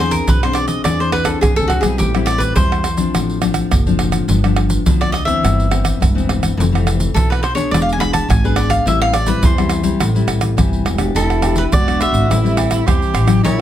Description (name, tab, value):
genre	samba and choro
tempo	105 BPM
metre	4/4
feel	straight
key	A minor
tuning	A4 = 440 Hz
part	cavaquinho	melody	0.0-13.6 s	F#4 to B5	-20 LUFS	equal	plate reverb
part	nylon-string guitar	accompaniment	0.0-13.6 s	F2 to G#4	-19 LUFS	left 5 dB	none
part	upright bass	bass	0.0-13.6 s	E1 to E3	-19 LUFS	equal	none
part	tube shaker, surdo, pandeiro, tamborim and agogo bells	percussion	0.1-13.6 s	none	-18 LUFS	right 2 dB	none
part	breathy tenor saxophone	second line	11.2-13.6 s	E4 to G4	-22 LUFS	right 3 dB	none
room	light reverb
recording	none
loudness	-13 LUFS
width	side -11 dB against mid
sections	0.0-11.2 A section; 11.2-13.6 B section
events	cavaquinho solo 0.0-11.2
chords	0.0 E7b13; 2.0 Am7; 3.1 Dm7/A; 4.3 G7; 5.4 Cmaj7/G; 6.6 Fmaj7; 7.7 E7; 8.9 Am7; 11.2 Em7; 12.3 Am7